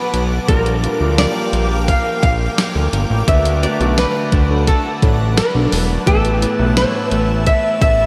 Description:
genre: 1980s-style pop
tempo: 86 BPM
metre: 4/4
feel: straight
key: unclear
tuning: A4 = 438 Hz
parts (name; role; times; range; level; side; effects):
- archtop guitar, miked and amplified; melody; 0.0-8.1 s; A4 to F5; -22 LUFS; equal; tape echo
- crunchy overdriven guitar; accompaniment; 0.0-8.1 s; A2 to D4; -30 LUFS; equal; analog chorus
- warm concert grand piano; accompaniment; 0.0-8.1 s; A2 to D5; -25 LUFS; equal; analog chorus
- granular cloud pad; sustained chords; 0.0-8.1 s; Bb4 to E6; -27 LUFS; equal; built-in reverb
- fat analog bass; bass; 0.1-8.1 s; E1 to D2; -20 LUFS; equal; none
- clean 12-bit digital drum machine; drums; 0.1-8.0 s; hi-hat, kick drum, snare drum, tambourine; -21 LUFS; equal; none
- mellow synth brass; stabs; 4.5-5.8 s; F#3 to A4; -27 LUFS; equal; chorus
room: wet lush hall reverb, RT60 3.1 s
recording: dreamy mix soaked in reverb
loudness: -16 LUFS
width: mono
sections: 0.0-8.1 A section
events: band accent 3.3-6.1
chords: 0.5 Bb6; 3.3 D6; 6.1 Asus2

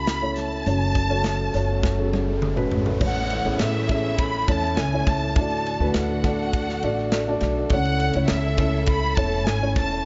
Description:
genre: piano-driven pop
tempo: 102 BPM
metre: 4/4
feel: straight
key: A major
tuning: A4 = 440 Hz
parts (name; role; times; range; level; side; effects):
- warm studio violin section; melody; 0.0-10.0 s; E5 to B5; -30 LUFS; equal; tape echo
- felt-muted upright piano; accompaniment; 0.0-10.1 s; A2 to D5; -28 LUFS; equal; tape echo
- upright bass; bass; 0.0-10.1 s; E1 to E2; -28 LUFS; equal; none
- riser and downlifter; sound effects; 1.5-7.7 s; none; -40 LUFS; equal; none
- modern studio drum kit; drums; 0.1-9.9 s; crash cymbal, hi-hat, kick drum, ride cymbal, snare drum, toms; -28 LUFS; equal; tape echo
- warm symphonic string section; sustained chords; 3.0-10.1 s; C#3 to A4; -38 LUFS; equal; none
room: small room ambience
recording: echo-heavy mix, nothing above 7.6 kHz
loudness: -23 LUFS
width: mono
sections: 0.0-3.0 A section; 3.0-10.1 B section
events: riser 1.5-3.0; drum fill 1.8-3.0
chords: 0.0 A/C#; 0.7 F#m; 3.0 A; 5.4 D; 7.7 A/C#

